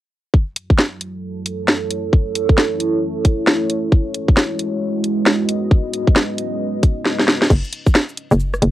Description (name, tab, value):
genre	UK garage, two-step garage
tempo	134 BPM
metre	4/4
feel	swing 62% on 16ths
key	F# dorian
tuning	A4 = 440 Hz
part	electronic kick drum	drums	0.3-7.9 s	none	-13 LUFS	equal	cassette tape
part	deep dark ambient pad	texture	1.0-8.7 s	F#3 to E5	-21 LUFS	right 1 dB	chorus, built-in reverb, sidechain pumping
part	garage drum kit	drums	0.6-8.7 s	crash cymbal, hi-hat, rim click, shaker, snare drum	-16 LUFS	equal	cassette tape
part	hollow knocking FM bass	bass	7.5-8.7 s	F#1	-16 LUFS	equal	none
room	light reverb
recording	home recording on cassette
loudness	-15 LUFS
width	side -14 dB against mid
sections	0.3-7.5 A section; 7.5-8.7 B section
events	drum fill 7.1-7.5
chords	0.3 F#m7; 1.9 A; 3.7 G#m7; 5.7 C#9sus4; 7.5 Esus2/F#